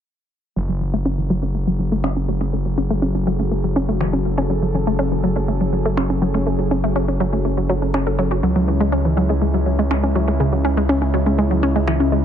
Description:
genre	melodic techno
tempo	122 BPM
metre	4/4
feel	straight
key	F# minor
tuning	A4 = 440 Hz
part	lush unison pad	sustained chords	0.6-12.2 s	C#3 to A4	-24 LUFS	left 1 dB	chorus
part	wide unison pluck	arpeggios	0.6-12.2 s	C#3 to A4	-20 LUFS	equal	analog delay
part	gritty driven synth bass	bass	0.6-12.2 s	F#1 to C#2	-21 LUFS	equal	distortion
part	electronic finger snaps	drums	2.0-12.0 s	none	-32 LUFS	equal	low-pass filter on snare, low-pass filter on room, analog delay
room	light reverb, digital ambience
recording	echo-heavy mix, nothing above 10.6 kHz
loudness	-17 LUFS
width	side -9 dB against mid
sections	0.6-12.2 A section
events	filter sweep on synth arpeggio sound 0.6-12.2; filter sweep on analog synth pad 0.6-12.2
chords	0.6 F#madd9; 8.4 C#m

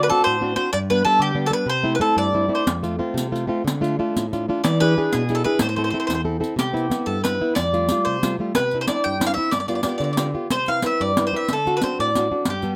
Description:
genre	italian folk, Italian serenade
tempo	123 BPM (dotted quarters)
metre	6/8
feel	rubato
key	A minor, C major from 6.6 s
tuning	A4 = 435 Hz
part	mandolin	melody	0.0-12.7 s	G4 to G5	-24 LUFS	equal	none
part	flamenco guitar	accompaniment	0.0-12.8 s	E2 to B4	-25 LUFS	equal	none
part	riq	percussion	2.7-12.7 s	none	-27 LUFS	equal	none
room	moderate small room reverb, RT60 0.5 s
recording	close, detailed microphones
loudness	-21 LUFS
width	mono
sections	0.0-6.6 A section; 6.6-12.8 B section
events	none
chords	0.0 D7; 0.7 G; 1.7 C6; 2.7 F; 3.7 Dm; 4.6 E7; 5.6 Am; 6.6 Cmaj7; 7.6 Fadd9; 8.5 Cadd9; 9.5 G7; 10.5 Cmaj7; 11.5 D7

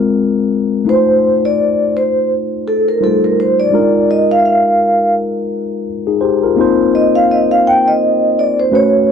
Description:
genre	soul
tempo	84 BPM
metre	4/4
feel	swing 58% on 16ths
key	C minor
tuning	A4 = 439 Hz
part	mellow tine electric piano	accompaniment	0.0-9.1 s	G3 to C5	-14 LUFS	left 2 dB	phaser
part	vibraphone with soft mallets	melody	0.9-9.1 s	A4 to G5	-12 LUFS	equal	none
room	light reverb, studio reverb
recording	dry, close 1970s-style studio recording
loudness	-11 LUFS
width	side -7 dB against mid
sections	0.0-9.1 A section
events	vibraphone solo 0.0-9.1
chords	0.0 Ab69; 0.9 F7; 3.7 Bb7sus4; 6.6 Cm7

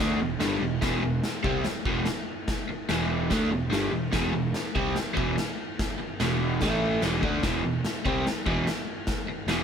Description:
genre	garage rock duo or trio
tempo	145 BPM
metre	4/4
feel	straight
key	E minor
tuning	A4 = 442 Hz
part	overdriven electric guitar	riff	0.0-9.6 s	E2 to D4	-26 LUFS	right 1 dB	none
part	fuzz picked electric bass	bass	0.0-9.6 s	E1 to D2	-32 LUFS	equal	overdrive
part	oversized low-tuned drum kit	drums	0.4-9.6 s	crash cymbal, kick drum, snare drum	-30 LUFS	left 1 dB	none
room	light reverb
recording	band playing live in one room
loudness	-25 LUFS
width	side -7 dB against mid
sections	0.0-9.6 A section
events	none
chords	0.0 Em; 6.6 A5; 7.0 E5

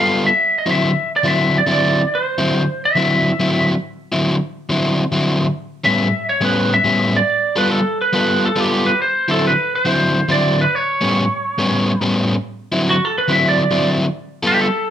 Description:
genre	blues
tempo	139 BPM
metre	4/4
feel	swing 67% on 8ths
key	D mixolydian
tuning	A4 = 440 Hz
part	lightly driven lead guitar	melody	0.0-14.9 s	F#4 to F5	-17 LUFS	right 1 dB	plate reverb
part	overdriven semi-hollow guitar	riff	0.0-14.7 s	A2 to A4	-17 LUFS	left 1 dB	none
room	moderate club reverb, RT60 0.8 s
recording	none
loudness	-14 LUFS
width	side -10 dB against mid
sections	0.0-12.4 A section; 12.4-14.9 B section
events	lead electric guitar solo 12.4-14.9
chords	0.4 D9; 5.5 A9; 7.3 G9; 9.0 D9; 10.7 A9; 12.4 D9; 14.1 G9

